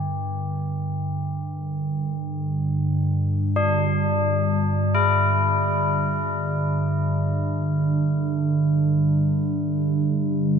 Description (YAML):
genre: world meditative, free-time meditation music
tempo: free time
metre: none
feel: none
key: unclear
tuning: A4 = 445 Hz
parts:
  - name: deep rumbling drone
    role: drone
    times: 0.0-10.6 s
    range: G2 to D3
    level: -22 LUFS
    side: right 1 dB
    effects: built-in reverb, phaser
  - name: tubular bells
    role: texture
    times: 0.0-10.6 s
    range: D4 to G4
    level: -27 LUFS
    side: left 3 dB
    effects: none
room: wet cathedral reverb, RT60 4.9 s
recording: cassette tape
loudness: -20 LUFS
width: side -7 dB against mid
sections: 0.0-2.7 A section; 2.7-10.6 A section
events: none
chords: none